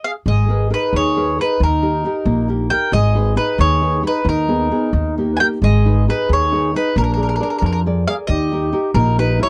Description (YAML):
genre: italian folk, Italian serenade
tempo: 90 BPM (dotted quarters)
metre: 6/8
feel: rubato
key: G# harmonic minor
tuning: A4 = 440 Hz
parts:
  - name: mandolin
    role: melody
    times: 0.0-9.5 s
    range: A#4 to G#5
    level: -22 LUFS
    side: equal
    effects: none
  - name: mellow accordion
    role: second line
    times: 0.1-9.5 s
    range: D4 to B4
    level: -27 LUFS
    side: equal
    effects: none
  - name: nylon-string guitar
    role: accompaniment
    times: 0.3-9.5 s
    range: D#3 to D5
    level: -23 LUFS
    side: equal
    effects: none
  - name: upright bass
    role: bass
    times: 0.3-9.4 s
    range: G#1 to E#2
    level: -20 LUFS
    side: equal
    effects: none
room: light reverb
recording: dry, close 1970s-style studio recording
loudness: -17 LUFS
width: mono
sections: 0.3-9.5 A section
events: stop 0.0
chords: 0.3 G#madd9; 1.6 D#; 2.9 G#m; 4.3 G#m/D#; 4.9 D#; 5.6 G#m; 7.0 A#7; 8.3 D#